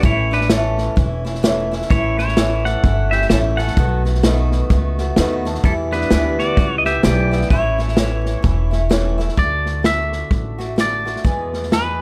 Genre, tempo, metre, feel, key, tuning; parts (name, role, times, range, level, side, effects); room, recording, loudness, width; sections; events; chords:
honky-tonk and classic country; 128 BPM; 4/4; swing 61% on 8ths; D major; A4 = 440 Hz
pedal steel guitar; second line; 0.0-8.9 s; C#4 to F#5; -24 LUFS; equal
picked acoustic archtop guitar; accompaniment; 0.0-12.0 s; E2 to G#4; -26 LUFS; equal
upright bass; bass; 0.0-12.0 s; E1 to E2; -23 LUFS; equal
natural country drum kit; drums; 0.0-11.8 s; hi-hat, kick drum, snare drum; -22 LUFS; equal
dark upright piano; accompaniment; 0.5-9.3 s; D#4 to A5; -28 LUFS; equal
twangy electric guitar; melody; 9.4-12.0 s; B4 to E5; -24 LUFS; equal
little or no reverb; dark, warm production; -18 LUFS; mono
0.0-9.4 A section; 9.4-12.0 B section
pedal steel guitar solo 0.0-9.4; upright piano fill 4.9-5.6
0.0 A; 3.8 B7; 5.6 Em; 7.5 A; 9.4 D; 11.2 E